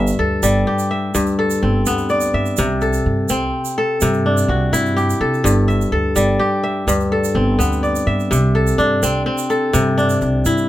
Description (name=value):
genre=west african traditional, West African string and xylophone music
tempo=84 BPM (dotted quarters)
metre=12/8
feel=straight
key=C lydian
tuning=A4 = 440 Hz
part: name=kora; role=arpeggios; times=0.0-10.7 s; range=G2 to E5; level=-16 LUFS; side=left 1 dB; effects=none
part: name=upright bass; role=bass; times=0.0-10.7 s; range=G1 to C3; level=-20 LUFS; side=right 1 dB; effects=none
part: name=tube shaker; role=percussion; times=0.1-10.6 s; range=none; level=-27 LUFS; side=right 10 dB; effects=none
room=little or no reverb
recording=none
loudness=-15 LUFS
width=side -14 dB against mid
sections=0.0-10.7 A section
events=none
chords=0.0 G; 2.6 C; 5.4 G; 8.3 C